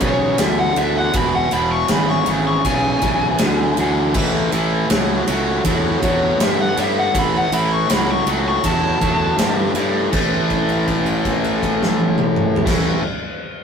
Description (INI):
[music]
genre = blues rock power trio and southern rock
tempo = 80 BPM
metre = 4/4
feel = straight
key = A mixolydian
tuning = A4 = 440 Hz
[part]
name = smooth overdriven lead guitar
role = melody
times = 0.0-10.1 s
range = C#5 to C#6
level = -20 LUFS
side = left 2 dB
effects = none
[part]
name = distorted electric guitar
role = riff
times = 0.0-13.0 s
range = E2 to A3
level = -19 LUFS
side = equal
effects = overdrive
[part]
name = fuzz fingered electric bass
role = bass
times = 0.0-13.0 s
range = E1 to G2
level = -23 LUFS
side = equal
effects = overdrive
[part]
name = big rock drum kit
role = drums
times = 0.0-12.8 s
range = crash cymbal, kick drum, ride cymbal, snare drum, toms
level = -21 LUFS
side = equal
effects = none
[sound]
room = light reverb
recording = rough rehearsal-room recording, warm saturation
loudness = -15 LUFS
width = side -7 dB against mid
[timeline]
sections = 0.0-10.1 A section; 10.1-13.1 B section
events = lead electric guitar solo 0.0-10.1; held note 10.1-12.7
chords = 0.0 E7; 4.2 A7; 10.1 A5